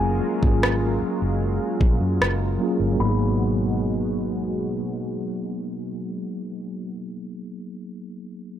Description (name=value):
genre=contemporary R&B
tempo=76 BPM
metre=4/4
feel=straight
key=G# dorian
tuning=A4 = 440 Hz
part: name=clear grand piano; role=melody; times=0.0-6.8 s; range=G#5 to B5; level=-34 LUFS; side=left 3 dB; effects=low-pass filter, analog delay
part: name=bell-like tine electric piano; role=accompaniment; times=0.0-8.6 s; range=F#3 to G#4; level=-26 LUFS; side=equal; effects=fast stereo tremolo, low-pass filter
part: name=lush unison pad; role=sustained chords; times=0.0-6.8 s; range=B2 to A#4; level=-31 LUFS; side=right 1 dB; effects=chorus, sidechain pumping, low-pass filter
part: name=vintage muted fingered electric bass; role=bass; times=0.0-6.8 s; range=F#1 to F#2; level=-25 LUFS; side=equal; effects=none
part: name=smooth R&B drum kit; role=drums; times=0.4-2.4 s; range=kick drum, rim click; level=-20 LUFS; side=equal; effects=none
room=digital ambience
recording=dry, gritty hardware recording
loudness=-21 LUFS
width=side -10 dB against mid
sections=0.0-3.0 A section; 3.0-6.1 B section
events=filter sweep 0.0-3.0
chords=0.0 F#maj9; 3.0 G#m9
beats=0.62 1.41 2.20 | 2.99 3.78 4.57 5.36